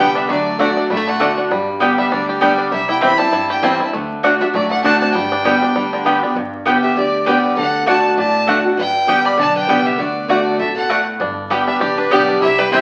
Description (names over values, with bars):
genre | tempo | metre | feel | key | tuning
bluegrass | 198 BPM | 4/4 | swing 56% on 8ths | G major | A4 = 440 Hz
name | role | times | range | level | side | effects
bluegrass banjo | melody | 0.0-6.4, 11.2-12.8 s | D3 to G4 | -23 LUFS | equal | none
clear fiddle | melody | 0.0-12.8 s | B4 to B5 | -22 LUFS | equal | none
lap resonator guitar | second line | 0.0-12.8 s | F#3 to D5 | -24 LUFS | equal | none
picked acoustic archtop guitar | accompaniment | 0.0-12.8 s | G2 to G4 | -22 LUFS | equal | none
mandolin | stabs | 0.0-12.8 s | A3 to G5 | -21 LUFS | equal | none
upright bass | bass | 0.0-12.8 s | G1 to G2 | -38 LUFS | equal | none
room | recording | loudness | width
wet large studio reverb, RT60 1.0 s | very old 78 rpm record, vinyl crackle | -16 LUFS | mono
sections
0.0-6.4 A section; 6.4-12.8 A section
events
none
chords
0.3 D; 1.5 G; 2.7 C; 3.9 D; 5.1 G; 7.6 D; 8.8 G; 10.0 D; 11.2 G